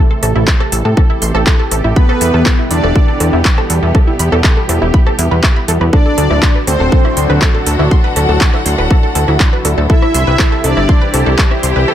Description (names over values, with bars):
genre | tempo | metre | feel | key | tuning
melodic techno | 121 BPM | 4/4 | straight | unclear | A4 = 441 Hz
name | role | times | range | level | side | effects
sweeping resonant pad | sustained chords | 0.0-11.9 s | A2 to G4 | -21 LUFS | equal | chorus, sidechain pumping
wide unison pluck | arpeggios | 0.0-11.9 s | E4 to E6 | -19 LUFS | right 1 dB | sidechain pumping, dub echo
clear symphonic string section | texture | 0.0-11.9 s | B3 to G5 | -22 LUFS | equal | sidechain pumping
plucky analog bass | bass | 0.2-11.9 s | D1 to A2 | -14 LUFS | equal | sidechain pumping
deep house drum kit | drums | 0.2-11.9 s | handclaps, hi-hat, rim click | -18 LUFS | equal | none
electronic kick drum | drums | 0.5-11.5 s | none | -11 LUFS | equal | none
wide unison lead | melody | 2.0-11.3 s | B3 to E4 | -19 LUFS | equal | vintage 12-bit sampler grit, sidechain pumping, digital delay
soft supersaw | second line | 2.0-11.3 s | B4 to E5 | -22 LUFS | right 1 dB | phaser, sidechain pumping, dub echo
room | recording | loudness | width
little or no reverb | none | -9 LUFS | side -11 dB against mid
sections
0.0-11.9 A section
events
none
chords
0.0 Am; 2.0 Em; 5.9 D; 9.9 C